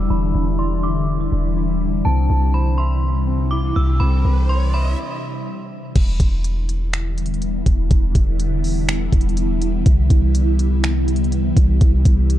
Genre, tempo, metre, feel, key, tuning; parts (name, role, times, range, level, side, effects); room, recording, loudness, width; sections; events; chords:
hip hop, atmospheric cloud-rap; 123 BPM; 4/4; half-time; E minor; A4 = 440 Hz
metallic FM bell; melody; 0.0-5.0 s; A5 to E6; -28 LUFS; right 1 dB; chorus, low-pass filter, tape echo
ethereal airy pad; sustained chords; 0.0-12.4 s; C3 to E4; -23 LUFS; left 2 dB; ensemble chorus, built-in reverb, phaser, sidechain pumping, low-pass filter
soft electric-piano-like synth keys; arpeggios; 0.0-6.0 s; C4 to E5; -31 LUFS; left 4 dB; chorus, low-pass filter, tape echo
warm 808-style bass; bass; 0.0-12.4 s; E1 to C2; -18 LUFS; equal
downlifter and riser; sound effects; 0.0-5.0 s; -36 LUFS; right 1 dB
smooth R&B drum kit; drums; 6.0-12.4 s; crash cymbal, finger snaps, hi-hat, kick drum; -17 LUFS; equal
little or no reverb; dark, warm production; -16 LUFS; side -13 dB against mid
0.0-6.0 A section; 6.0-12.4 B section
filter sweep 0.0-6.0; riser 3.1-6.0; stop 5.0-6.0
0.0 Em7; 2.1 Cmaj7; 6.0 Em7; 9.9 Cmaj7